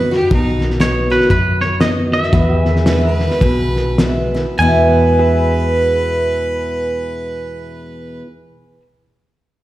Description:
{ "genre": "honky-tonk and classic country", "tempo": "98-122 BPM", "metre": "4/4", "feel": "swing 61% on 8ths", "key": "E major", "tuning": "A4 = 438 Hz", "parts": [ { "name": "bright fiddle", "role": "second line", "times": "0.0-8.2 s", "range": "D#4 to B4", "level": "-22 LUFS", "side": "right 3 dB", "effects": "slapback echo" }, { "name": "picked acoustic archtop guitar", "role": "accompaniment", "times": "0.0-8.3 s", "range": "E2 to F#4", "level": "-18 LUFS", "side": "left 1 dB", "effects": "slapback echo" }, { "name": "pedal steel guitar", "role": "sustained chords", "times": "0.0-8.8 s", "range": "F#4 to E5", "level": "-26 LUFS", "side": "right 2 dB", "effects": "wide subtle chorus" }, { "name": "hollow-body short-scale fingered electric bass", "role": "bass", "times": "0.0-8.2 s", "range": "B1 to F#2", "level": "-18 LUFS", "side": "equal", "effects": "none" }, { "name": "cloth-damped thuddy drum kit", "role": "drums", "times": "0.1-4.4 s", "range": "hi-hat, kick drum, snare drum", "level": "-18 LUFS", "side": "equal", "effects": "slapback echo" }, { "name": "twangy electric guitar", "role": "melody", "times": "0.8-8.2 s", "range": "B4 to G#5", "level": "-19 LUFS", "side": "right 2 dB", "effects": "slapback echo, tape echo" } ], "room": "moderate club reverb, RT60 0.6 s", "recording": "live gig heard through the venue's PA, recital hall reverb", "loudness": "-13 LUFS", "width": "side -15 dB against mid", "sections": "0.0-4.6 A section; 4.6-9.5 B section", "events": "slowing down 0.3-4.6", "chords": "0.0 B; 2.3 E", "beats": "| 0.31 0.80 1.30 1.81 | 2.33 2.86 3.41 3.99 | 4.59 5.20 5.82 6.43 | 7.05 7.66 8.28" }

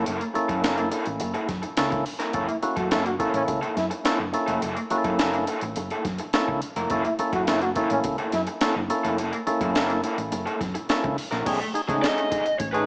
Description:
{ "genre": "funk", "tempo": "105 BPM", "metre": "4/4", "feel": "straight", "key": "unclear", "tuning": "A4 = 437 Hz", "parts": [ { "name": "raw garage guitar", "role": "accompaniment", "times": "0.0-12.9 s", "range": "A3 to A#4", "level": "-32 LUFS", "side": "equal", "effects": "overdrive, harmonic tremolo" }, { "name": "percussive tonewheel organ", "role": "stabs", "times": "0.0-12.9 s", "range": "A3 to A4", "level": "-29 LUFS", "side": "equal", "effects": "overdrive, analog delay" }, { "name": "hollow-body short-scale fingered electric bass", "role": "bass", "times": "0.0-12.9 s", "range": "E#1 to F#2", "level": "-36 LUFS", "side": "equal", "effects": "none" }, { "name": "breakbeat sampler-style drum kit", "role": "drums", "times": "0.1-12.9 s", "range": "crash cymbal, hi-hat, kick drum, snare drum", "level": "-32 LUFS", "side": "equal", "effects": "none" }, { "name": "breathy trombone", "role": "second line", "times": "2.5-8.4 s", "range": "C#4 to F#4", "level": "-31 LUFS", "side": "equal", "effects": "none" }, { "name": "lead guitar through a small cranked amp", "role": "melody", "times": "12.0-12.9 s", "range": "B4 to D#5", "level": "-27 LUFS", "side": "equal", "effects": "overdrive" } ], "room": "moderate plate reverb, RT60 2.3 s", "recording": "cassette tape, small speaker sound", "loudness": "-25 LUFS", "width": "mono", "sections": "0.0-11.5 A section; 11.5-12.9 B section", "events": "none", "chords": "0.0 F#7#9; 11.5 B13 (rootless)", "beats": "| 0.07 0.64 1.21 1.77 | 2.34 2.91 3.48 4.05 | 4.62 5.19 5.76 6.33 | 6.91 7.47 8.04 8.62 | 9.18 9.75 10.32 10.89 | 11.46 12.03 12.60" }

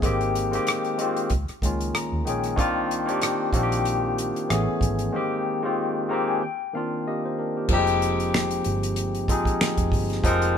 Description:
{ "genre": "R&B, neo-soul", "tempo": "94 BPM", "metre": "4/4", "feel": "swing 56% on 16ths", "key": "unclear", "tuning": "A4 = 440 Hz", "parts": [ { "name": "barky tine electric piano", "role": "accompaniment", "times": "0.0-10.6 s", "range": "Eb3 to Bb5", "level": "-24 LUFS", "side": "left 2 dB", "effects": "overdrive" }, { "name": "vintage muted fingered electric bass", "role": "bass", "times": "0.0-10.6 s", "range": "F1 to Eb2", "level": "-28 LUFS", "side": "right 1 dB", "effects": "none" }, { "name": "damped 70s drum kit", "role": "drums", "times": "0.0-10.5 s", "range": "crash cymbal, finger snaps, hi-hat, kick drum, rim click, snare drum", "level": "-26 LUFS", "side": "right 1 dB", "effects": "none" } ], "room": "light reverb", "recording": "band playing live in one room", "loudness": "-22 LUFS", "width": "side -8 dB against mid", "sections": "0.0-7.7 A section; 7.7-10.6 B section", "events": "tine electric piano fill 1.6-2.6, 5.8-7.7; break 5.1-7.7", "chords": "0.0 Abmaj9; 1.3 Db69; 2.6 Cm11; 4.5 Amaj9; 5.1 Abmaj9; 6.4 Cm11; 7.7 Fm9", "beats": "| 0.02 0.66 1.30 1.94 | 2.58 3.21 3.85 4.49 | 5.13 5.77 6.41 7.04 | 7.68 8.32 8.96 9.60 | 10.23" }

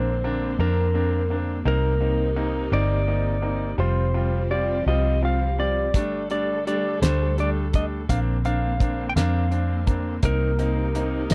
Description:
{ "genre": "six-eight pop ballad", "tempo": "56 BPM (dotted quarters)", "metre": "6/8", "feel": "straight", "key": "unclear", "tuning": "A4 = 440 Hz", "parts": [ { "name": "clean lap steel guitar", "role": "melody", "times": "0.0-11.3 s", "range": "Bb4 to G5", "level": "-29 LUFS", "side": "equal", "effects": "none" }, { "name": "clear concert grand piano", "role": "accompaniment", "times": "0.0-11.3 s", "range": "G3 to F4", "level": "-31 LUFS", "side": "equal", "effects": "none" }, { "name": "warm studio string section", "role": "sustained chords", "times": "0.0-11.3 s", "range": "C3 to A4", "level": "-36 LUFS", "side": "equal", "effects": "none" }, { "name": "vintage muted fingered electric bass", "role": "bass", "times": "0.0-11.3 s", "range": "F1 to F2", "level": "-26 LUFS", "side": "equal", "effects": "none" }, { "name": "damped 70s drum kit", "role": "drums", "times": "5.9-11.3 s", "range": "hi-hat, kick drum, snare drum", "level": "-25 LUFS", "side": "equal", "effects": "none" } ], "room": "little or no reverb", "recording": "dry, close 1970s-style studio recording", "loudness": "-23 LUFS", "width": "mono", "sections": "0.0-11.3 A section", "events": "none", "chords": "0.0 Bbadd9; 1.7 Cm7; 3.8 Fsus2; 5.9 Gsus2; 8.1 Bbadd9; 10.2 Cm7", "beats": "0.59 | 1.66 2.72 | 3.79 4.86 | 5.94 7.02 | 8.09 9.16 | 10.23 11.30" }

